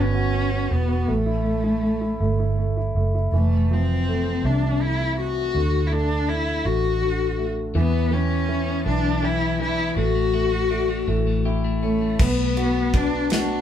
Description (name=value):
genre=six-eight pop ballad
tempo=54 BPM (dotted quarters)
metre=6/8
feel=straight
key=D major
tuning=A4 = 442 Hz
part: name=warm cello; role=melody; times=0.0-13.6 s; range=A3 to F#4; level=-24 LUFS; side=left 3 dB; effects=none
part: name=clear grand piano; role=accompaniment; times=0.0-13.6 s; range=C3 to F#4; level=-27 LUFS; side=right 1 dB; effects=none
part: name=vintage muted fingered electric bass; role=bass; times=0.0-13.6 s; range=E1 to E2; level=-23 LUFS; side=right 1 dB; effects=none
part: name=clean electric guitar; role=arpeggios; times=7.8-13.6 s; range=E3 to G4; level=-29 LUFS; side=left 8 dB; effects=none
part: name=modern studio drum kit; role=drums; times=12.2-13.5 s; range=crash cymbal, kick drum, ride cymbal, snare drum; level=-23 LUFS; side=equal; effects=none
room=moderate studio reverb, RT60 0.5 s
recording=band playing live in one room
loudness=-20 LUFS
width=side -10 dB against mid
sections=0.0-3.3 A section; 3.3-12.2 B section; 12.2-13.6 C section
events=none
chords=0.0 Emadd9; 1.1 A5; 3.3 Fmaj7; 5.5 D; 7.8 Em7; 10.0 D/A; 11.1 A7; 12.2 Bm7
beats=| 1.08 2.20 | 3.32 4.44 | 5.54 6.65 | 7.75 8.86 | 9.97 11.08 | 12.19 13.30